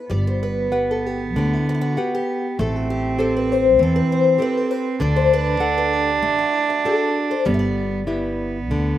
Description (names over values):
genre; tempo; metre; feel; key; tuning
fado-style ballad; 98 BPM; 4/4; rubato; G major; A4 = 439 Hz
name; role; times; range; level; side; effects
picked twelve-string acoustic guitar; melody; 0.0-9.0 s; E4 to E5; -22 LUFS; left 4 dB; slapback echo
warm cello; second line; 0.1-9.0 s; B3 to D4; -23 LUFS; right 5 dB; none
nylon-string guitar; accompaniment; 0.1-9.0 s; D3 to F#5; -23 LUFS; left 1 dB; none
upright bass; bass; 0.1-8.9 s; G1 to E2; -25 LUFS; equal; none
room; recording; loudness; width
little or no reverb; recorded outdoors, with no room sound; -18 LUFS; side -12 dB against mid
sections
0.1-9.0 A section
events
none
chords
0.1 Gmaj7; 2.6 Am7; 5.0 D; 7.5 G6